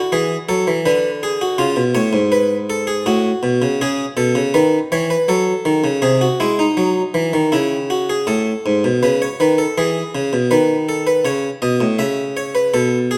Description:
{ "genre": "classical, baroque-style two-part invention for harpsichord", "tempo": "81 BPM", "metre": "3/4", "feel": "straight", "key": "unclear", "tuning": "A4 = 440 Hz", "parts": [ { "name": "harpsichord", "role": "solo", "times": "0.0-13.2 s", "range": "G#2 to E5", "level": "-17 LUFS", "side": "equal", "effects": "none" } ], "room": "moderate recital hall reverb, RT60 1.4 s", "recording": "none", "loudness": "-17 LUFS", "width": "mono", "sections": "0.0-8.3 A section; 8.3-13.2 B section", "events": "none", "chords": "0.0 F#m; 0.9 G#m7b5/D; 1.6 C#7; 3.1 F#m/A; 3.8 C#m; 5.3 D#m7b5/F#; 6.0 G#7/B#; 7.5 C#m; 8.3 B13/G#; 9.8 E; 10.5 B9; 12.0 C#m" }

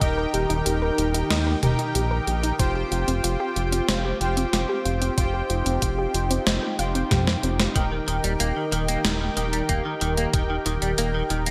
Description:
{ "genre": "synthwave", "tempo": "93 BPM", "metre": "4/4", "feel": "straight", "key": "Eb major", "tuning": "A4 = 439 Hz", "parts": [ { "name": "warm analog pad", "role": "sustained chords", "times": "0.0-11.5 s", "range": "Eb3 to Bb4", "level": "-33 LUFS", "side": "equal", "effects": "lush chorus, sidechain pumping" }, { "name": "soft round pluck", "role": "arpeggios", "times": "0.0-7.7 s", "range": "C4 to F5", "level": "-33 LUFS", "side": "equal", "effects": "chorus, digital delay" }, { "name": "analog synth brass", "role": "stabs", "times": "0.0-11.5 s", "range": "Eb4 to G5", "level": "-30 LUFS", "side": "equal", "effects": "chorus, digital delay" }, { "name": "round analog bass", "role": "bass", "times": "0.0-11.5 s", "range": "Eb1 to F2", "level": "-29 LUFS", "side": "equal", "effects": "none" }, { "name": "clean 12-bit digital drum machine", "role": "drums", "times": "0.0-11.5 s", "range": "hi-hat, snare drum, toms", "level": "-29 LUFS", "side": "equal", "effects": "gated reverb" }, { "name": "electronic kick drum", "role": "drums", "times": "0.0-10.5 s", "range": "none", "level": "-27 LUFS", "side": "equal", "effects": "none" }, { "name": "direct-recorded clean electric guitar", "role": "riff", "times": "7.8-11.5 s", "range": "Eb3 to Bb3", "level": "-32 LUFS", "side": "equal", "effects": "analog chorus, digital delay" } ], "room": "moderate plate reverb, RT60 2.4 s", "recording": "bright 1980s-style digital production", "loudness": "-24 LUFS", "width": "mono", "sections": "0.0-11.5 A section", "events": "drum fill 7.1-7.8", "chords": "0.0 Eb; 2.6 Fsus2; 7.8 Eb" }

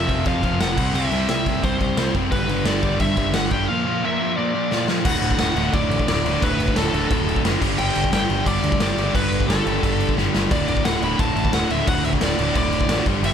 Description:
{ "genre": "punk rock", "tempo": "176 BPM", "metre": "4/4", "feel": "straight", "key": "unclear", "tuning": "A4 = 440 Hz", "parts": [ { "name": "bluesy overdriven lead guitar", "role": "melody", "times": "0.0-13.3 s", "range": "A4 to B5", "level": "-25 LUFS", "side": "left 1 dB", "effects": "distortion" }, { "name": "biting overdriven guitar", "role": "riff", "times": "0.0-13.3 s", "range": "D2 to C4", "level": "-25 LUFS", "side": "left 15 dB", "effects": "none" }, { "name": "sludgy distorted guitar", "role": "riff", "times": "0.0-13.3 s", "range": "D2 to C4", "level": "-25 LUFS", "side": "right 12 dB", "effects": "overdrive" }, { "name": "growling picked electric bass", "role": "bass", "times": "0.0-13.3 s", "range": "D1 to G2", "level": "-26 LUFS", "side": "equal", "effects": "overdrive" }, { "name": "raw garage drum kit", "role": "drums", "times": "0.1-13.3 s", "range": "crash cymbal, kick drum, snare drum", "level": "-23 LUFS", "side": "equal", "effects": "none" } ], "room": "little or no reverb", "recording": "none", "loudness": "-18 LUFS", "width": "side -8 dB against mid", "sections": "0.0-5.1 A section; 5.1-13.3 B section", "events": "drum fill 4.7-5.1, 10.2-10.5", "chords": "0.0 F5; 0.8 C; 2.3 G; 3.7 Bb; 5.1 D; 7.6 G5; 10.5 D5" }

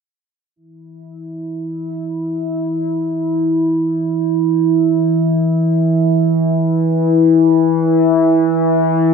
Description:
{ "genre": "ambient", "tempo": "free time", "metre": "none", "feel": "none", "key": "unclear", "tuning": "A4 = 435 Hz", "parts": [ { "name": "analog drone", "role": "drone", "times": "1.2-9.1 s", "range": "E3 to E4", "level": "-13 LUFS", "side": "equal", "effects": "chorus" } ], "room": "wet huge ambient reverb, RT60 7.5 s", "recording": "none", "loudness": "-13 LUFS", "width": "side -5 dB against mid", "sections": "0.6-9.1 A section", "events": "none", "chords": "none" }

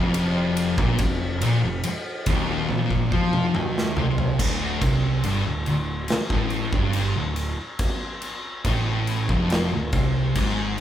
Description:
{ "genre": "stoner and doom metal", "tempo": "70 BPM", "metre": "4/4", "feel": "straight", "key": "D phrygian", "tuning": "A4 = 440 Hz", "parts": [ { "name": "thick fuzz guitar", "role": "riff", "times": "0.0-10.8 s", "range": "D2 to F3", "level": "-25 LUFS", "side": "left 3 dB", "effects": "distortion" }, { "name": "thick fuzz guitar", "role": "riff", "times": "0.0-10.8 s", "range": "D2 to F3", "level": "-28 LUFS", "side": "right 6 dB", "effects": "distortion" }, { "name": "fuzz picked electric bass", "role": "bass", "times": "0.0-10.8 s", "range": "D1 to F2", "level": "-29 LUFS", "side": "equal", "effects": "overdrive" }, { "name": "big rock drum kit", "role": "drums", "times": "0.1-10.8 s", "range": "crash cymbal, kick drum, ride cymbal, snare drum, toms", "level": "-25 LUFS", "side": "equal", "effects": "none" } ], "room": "light reverb", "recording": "band playing live in one room", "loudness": "-21 LUFS", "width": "side -11 dB against mid", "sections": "0.0-4.4 A section; 4.4-10.8 B section", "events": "drum fill 2.7-4.4", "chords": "0.0 F5; 4.4 Dm" }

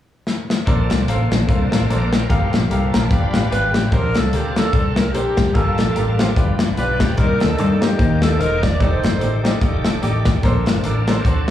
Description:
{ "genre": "uptempo gospel", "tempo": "148 BPM", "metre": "4/4", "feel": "swing 57% on 8ths", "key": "Bb major", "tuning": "A4 = 441 Hz", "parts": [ { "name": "modern studio drum kit", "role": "drums", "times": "0.3-11.5 s", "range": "hi-hat, kick drum, snare drum", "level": "-19 LUFS", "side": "left 2 dB", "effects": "slapback echo" }, { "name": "clear grand piano", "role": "accompaniment", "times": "0.7-11.5 s", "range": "G2 to Bb5", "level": "-24 LUFS", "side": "equal", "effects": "slapback echo" }, { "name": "bright tonewheel organ", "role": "sustained chords", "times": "0.7-11.5 s", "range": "D3 to D5", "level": "-28 LUFS", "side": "right 2 dB", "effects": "slow rotary speaker, chorus vibrato" }, { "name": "warm symphonic string section", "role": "sustained chords", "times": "0.7-3.9 s", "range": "Bb3 to C5", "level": "-31 LUFS", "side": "equal", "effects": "none" }, { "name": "fingered electric bass", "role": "bass", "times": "0.7-11.5 s", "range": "E1 to G2", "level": "-20 LUFS", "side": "left 1 dB", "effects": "none" }, { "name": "clear saxophone section", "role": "melody", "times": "3.5-9.6 s", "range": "Bb3 to D5", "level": "-27 LUFS", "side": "left 2 dB", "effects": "slapback echo" }, { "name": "warm alto saxophone", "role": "melody", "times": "3.5-9.6 s", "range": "G4 to D5", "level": "-24 LUFS", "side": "right 3 dB", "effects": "slapback echo" }, { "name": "clean electric guitar", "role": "second line", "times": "9.6-10.4 s", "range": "A3 to A4", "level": "-30 LUFS", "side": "right 6 dB", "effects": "tremolo, slapback echo" } ], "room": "studio ambience", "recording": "live gig heard through the venue's PA, club reverb", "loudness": "-15 LUFS", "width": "side -11 dB against mid", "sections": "0.7-3.9 A section; 3.9-11.5 B section", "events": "drum fill 0.3-0.7; grand piano fill 2.7-3.9", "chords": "0.0 N.C.; 0.7 Bbmaj9; 2.3 Gm9; 3.1 G7; 3.9 Bbmaj9; 5.6 Gm9; 6.4 G7; 7.2 Cm9; 8.8 F13; 10.4 Bbmaj9" }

